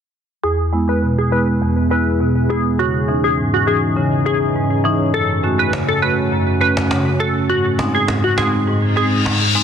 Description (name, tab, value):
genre	dancehall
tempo	102 BPM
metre	4/4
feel	straight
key	unclear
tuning	A4 = 438 Hz
part	glassy wavetable pluck	melody	0.4-9.1 s	F#4 to B4	-20 LUFS	equal	chorus, low-pass filter, tape echo
part	marimba with medium hard mallets	accompaniment	0.4-9.6 s	E2 to F#4	-17 LUFS	equal	low-pass filter
part	deep dark ambient pad	sustained chords	1.7-9.6 s	E3 to G#4	-24 LUFS	equal	chorus, built-in reverb, low-pass filter
part	cajon	drums	5.7-9.4 s	none	-25 LUFS	equal	vintage 12-bit sampler grit
part	reverse cymbal	sound effects	8.9-9.6 s	none	-19 LUFS	left 5 dB	none
room	light reverb, small room reverb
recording	dense, heavily limited modern master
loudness	-14 LUFS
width	side -8 dB against mid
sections	0.4-9.6 A section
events	filter sweep 0.4-9.6; reverse cymbal 8.9-9.6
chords	0.4 E; 2.8 C#madd9; 5.1 F#m; 7.5 G#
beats	| 0.44 1.02 1.61 2.20 | 2.79 3.38 3.97 4.55 | 5.14 5.73 6.32 6.91 | 7.50 8.08 8.67 9.26